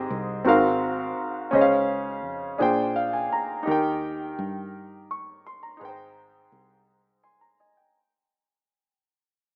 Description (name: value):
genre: slow gospel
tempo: 56 BPM (dotted quarters)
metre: 6/8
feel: straight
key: Ab major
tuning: A4 = 438 Hz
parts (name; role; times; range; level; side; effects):
- clear grand piano; accompaniment; 0.0-8.1 s; Ab2 to Db6; -25 LUFS; equal; none
- fingered electric bass; bass; 0.0-7.9 s; Ab1 to G2; -39 LUFS; equal; none
room: light reverb, studio ambience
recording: rough home demo mix, small speaker sound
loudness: -24 LUFS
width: mono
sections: 0.0-8.0 A section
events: fade-out 0.0-8.0; grand piano fill 2.6-3.7, 6.9-8.0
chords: 0.5 Ab13; 1.5 Dbmaj7; 2.6 Bb13; 3.7 Eb; 5.8 Abmaj7